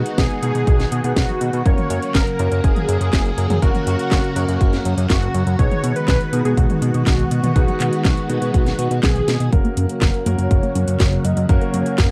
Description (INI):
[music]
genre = italo disco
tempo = 122 BPM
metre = 4/4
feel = straight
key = F# major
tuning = A4 = 439 Hz
[part]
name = unison lead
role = melody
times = 0.0-12.1 s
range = F#4 to D#5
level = -28 LUFS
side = equal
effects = analog chorus, cassette tape, tape echo
[part]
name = phased string machine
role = sustained chords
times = 0.0-12.1 s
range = C#3 to G#4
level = -29 LUFS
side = equal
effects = ensemble chorus, phaser
[part]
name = warm baby grand piano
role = stabs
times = 0.0-12.1 s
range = A#3 to A#4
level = -29 LUFS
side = equal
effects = none
[part]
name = fat analog bass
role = bass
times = 0.0-12.1 s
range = F#1 to B2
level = -22 LUFS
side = equal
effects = none
[part]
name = house drum kit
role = drums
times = 0.1-12.1 s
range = handclaps, hi-hat, snare drum, toms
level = -26 LUFS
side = equal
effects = high-pass filter on hats, high-pass filter on toms, high-pass filter on snare, high-pass filter on room
[part]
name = electronic kick drum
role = drums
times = 0.2-12.1 s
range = none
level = -20 LUFS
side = equal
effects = none
[part]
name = analog pluck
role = arpeggios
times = 9.5-12.1 s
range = F#3 to F#4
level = -30 LUFS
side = equal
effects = none
[sound]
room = little or no reverb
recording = dry, close 1970s-style studio recording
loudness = -18 LUFS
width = mono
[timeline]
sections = 0.0-9.5 A section; 9.5-12.1 B section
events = drum fill 9.3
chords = 0.0 B6; 1.7 F#; 5.6 B6; 9.5 F#